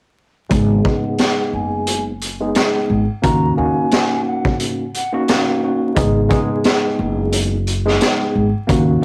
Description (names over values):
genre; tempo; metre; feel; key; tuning
hip hop, boom-bap hip-hop; 88 BPM; 4/4; swing 56% on 16ths; unclear; A4 = 440 Hz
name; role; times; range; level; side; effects
breathy hollow jazz flute; melody; 0.5-5.1 s; F#5 to A#5; -27 LUFS; equal; high-pass filter, low-pass filter, cassette tape
tine electric piano; accompaniment; 0.5-9.0 s; G#3 to G#4; -21 LUFS; equal; overdrive, cassette tape, high-pass filter, low-pass filter
upright bass; bass; 0.5-9.0 s; F#1 to D#2; -21 LUFS; equal; none
raw garage drum kit; drums; 0.5-8.9 s; hi-hat, kick drum, snare drum; -21 LUFS; equal; cassette tape
room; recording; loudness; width
light reverb; home recording on cassette, vinyl crackle; -17 LUFS; mono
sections
0.5-6.0 A section; 6.0-9.0 B section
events
filter sweep 0.5-6.0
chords
0.5 G#m; 3.2 D#m7; 6.0 G#m